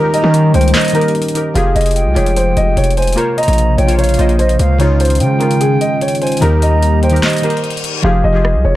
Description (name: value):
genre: hip hop, trap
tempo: 148 BPM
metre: 4/4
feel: half-time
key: F minor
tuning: A4 = 440 Hz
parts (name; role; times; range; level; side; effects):
- dark concert grand piano; melody; 0.0-8.8 s; Ab4 to F5; -17 LUFS; equal; low-pass filter, digital delay
- glassy digital keys; accompaniment; 0.0-8.8 s; Db3 to Eb5; -18 LUFS; left 1 dB; chorus, low-pass filter
- dark analog pad; sustained chords; 0.0-8.0 s; C3 to G5; -21 LUFS; equal; chorus
- silver concert flute; second line; 0.1-7.6 s; Eb5 to Bb5; -22 LUFS; right 4 dB; digital delay
- trap drum kit; drums; 0.1-8.5 s; handclaps, hi-hat, rim click, snare drum; -22 LUFS; left 1 dB; overdrive
- hard-hitting 808-style bass; bass; 0.2-8.8 s; F1 to Eb3; -13 LUFS; equal; none
- reverse cymbal; sound effects; 7.4-8.0 s; none; -23 LUFS; left 6 dB; none
room: little or no reverb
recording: dark, warm production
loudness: -11 LUFS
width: side -15 dB against mid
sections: 0.0-1.6 A section; 1.6-8.0 B section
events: break 0.7-1.6, 7.2-8.0; reverse cymbal 7.4-8.0; hi-hats muted 8.0-8.8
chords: 0.0 Eb; 1.6 Fmadd9; 3.2 Bbmadd9; 4.8 Dbadd9; 6.4 Eb; 8.0 Fmadd9